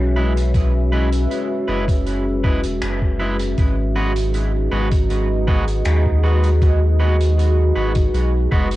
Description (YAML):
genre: ambient dub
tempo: 79 BPM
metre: 4/4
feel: straight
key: G# minor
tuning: A4 = 440 Hz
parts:
  - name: deep dark ambient pad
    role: sustained chords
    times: 0.0-8.8 s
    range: G#3 to E5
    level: -24 LUFS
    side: right 1 dB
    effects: chorus, built-in reverb, cassette tape
  - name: vibraphone with medium hard mallets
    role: arpeggios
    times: 0.0-8.8 s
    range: F#4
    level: -28 LUFS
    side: left 2 dB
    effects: cassette tape, dub echo
  - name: warm sub bass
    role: bass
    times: 0.0-8.8 s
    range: E1 to D#2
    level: -18 LUFS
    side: equal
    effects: none
  - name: electric guitar at the edge of break-up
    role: stabs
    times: 0.2-8.7 s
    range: G#3 to B4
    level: -27 LUFS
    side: right 2 dB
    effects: cassette tape, dub echo
  - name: soft-mallet drum kit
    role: drums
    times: 0.4-8.8 s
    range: finger snaps, hi-hat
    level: -34 LUFS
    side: equal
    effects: cassette tape, dub echo
  - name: electronic kick drum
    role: drums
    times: 0.5-8.7 s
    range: none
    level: -18 LUFS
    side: equal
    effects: cassette tape
room: small room ambience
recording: home recording on cassette, nothing above 10.7 kHz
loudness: -16 LUFS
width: side -16 dB against mid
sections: 0.0-3.6 A section; 3.6-8.8 B section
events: filter sweep on vibraphone 0.0-3.6; band accent 2.8-3.2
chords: 0.0 F#9sus4; 3.6 G#m7